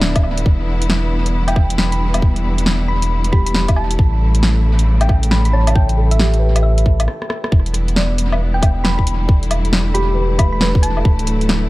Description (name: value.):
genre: future garage.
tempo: 136 BPM.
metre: 4/4.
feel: swing 64% on 16ths.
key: E dorian.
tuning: A4 = 440 Hz.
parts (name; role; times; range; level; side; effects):
felt-muted upright piano; accompaniment; 0.0-0.5, 3.3-11.1 s; D4 to E5; -27 LUFS; equal; sidechain pumping, tape echo.
clear studio string section; sustained chords; 0.0-11.7 s; C#3 to E4; -24 LUFS; left 1 dB; vintage 12-bit sampler grit, sidechain pumping.
warm sub bass; bass; 0.0-11.7 s; D1 to A1; -16 LUFS; equal; sidechain pumping.
garage drum kit; drums; 0.0-11.6 s; hi-hat, rim click, snare drum, woodblock; -20 LUFS; equal; analog delay.
electronic kick drum; drums; 0.2-11.2 s; none; -13 LUFS; equal; none.
thumb-piano-like synth pluck; melody; 1.5-11.1 s; E5 to B5; -26 LUFS; equal; chorus, tape echo.
room: digital ambience.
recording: echo-heavy mix.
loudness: -13 LUFS.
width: side -19 dB against mid.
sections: 0.0-7.5 A section; 7.5-11.7 B section.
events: break 7.1-7.5; drum fill 7.1-7.5.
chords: 0.5 Em7; 4.0 A7; 7.5 Em7; 11.0 Dadd9.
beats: 0.02 | 0.46 0.90 1.34 1.78 | 2.22 2.66 3.11 3.55 | 3.99 4.43 4.87 5.31 | 5.75 6.19 6.63 7.08 | 7.52 7.96 8.40 8.84 | 9.28 9.72 10.16 10.61 | 11.05 11.49.